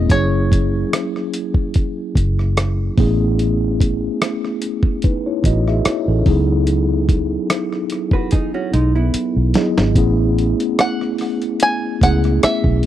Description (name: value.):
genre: R&B, neo-soul.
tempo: 73 BPM.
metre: 4/4.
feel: swing 54% on 16ths.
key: unclear.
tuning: A4 = 440 Hz.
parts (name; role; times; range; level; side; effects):
bluegrass banjo; melody; 0.0-1.3, 10.8-12.9 s; C#5 to G#5; -20 LUFS; equal; none.
mellow tine electric piano; accompaniment; 0.0-12.9 s; F#3 to E5; -20 LUFS; equal; medium stereo tremolo.
vintage muted fingered electric bass; bass; 0.0-12.8 s; F#1 to C#2; -17 LUFS; equal; none.
dusty soul sampler-style drum kit; drums; 0.1-12.9 s; hi-hat, kick drum, rim click, snare drum; -18 LUFS; equal; overdrive.
vintage hollow-body jazz guitar; second line; 8.1-9.9 s; G#3 to B4; -22 LUFS; right 4 dB; none.
room: little or no reverb.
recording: dry, close 1970s-style studio recording.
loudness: -15 LUFS.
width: side -12 dB against mid.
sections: 0.0-10.0 A section; 10.0-12.9 B section.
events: drum fill 8.3-10.0.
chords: 0.1 F#7; 3.0 Amaj9; 6.3 C#m11; 10.0 Amaj9.